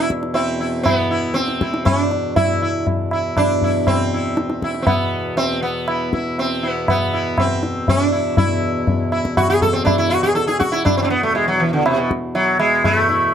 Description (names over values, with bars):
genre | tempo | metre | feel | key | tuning
indian classical, Hindustani | 120 BPM | 3/4 | straight | unclear | A4 = 440 Hz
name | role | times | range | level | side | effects
sitar | melody | 0.0-13.3 s | B2 to A4 | -18 LUFS | right 1 dB | none
hand-pumped harmonium | drone | 0.0-13.3 s | E2 to B2 | -26 LUFS | left 1 dB | none
tabla | percussion | 0.1-13.3 s | none | -20 LUFS | left 1 dB | none
room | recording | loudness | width
moderate small room reverb, RT60 0.6 s | none | -16 LUFS | side -8 dB against mid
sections
0.0-2.4 A section; 2.4-13.3 B section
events
none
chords
none